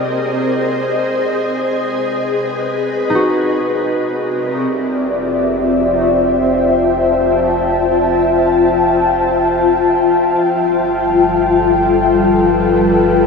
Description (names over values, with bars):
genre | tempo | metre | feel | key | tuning
ambient | free time | none | none | F lydian from 4.7 s | A4 = 437 Hz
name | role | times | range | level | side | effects
ethereal airy pad | sustained chords | 0.0-13.3 s | G3 to A5 | -13 LUFS | left 2 dB | ensemble chorus, built-in reverb
bowed-like drone | drone | 0.0-13.3 s | C3 to F4 | -28 LUFS | equal | built-in reverb
concert harp | arpeggios | 3.1-5.8 s | D#4 to F#4 | -22 LUFS | equal | diffuse ambient delay
warm sub bass | bass | 4.7-13.3 s | F1 to G1 | -28 LUFS | equal | none
room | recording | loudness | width
wet huge ambient reverb, RT60 8.0 s | none | -12 LUFS | side -4 dB against mid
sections
0.0-4.7 A section; 4.7-13.3 B section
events
none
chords
0.0 Ab; 1.8 B6; 3.7 C7; 4.7 Fmaj7; 10.4 G7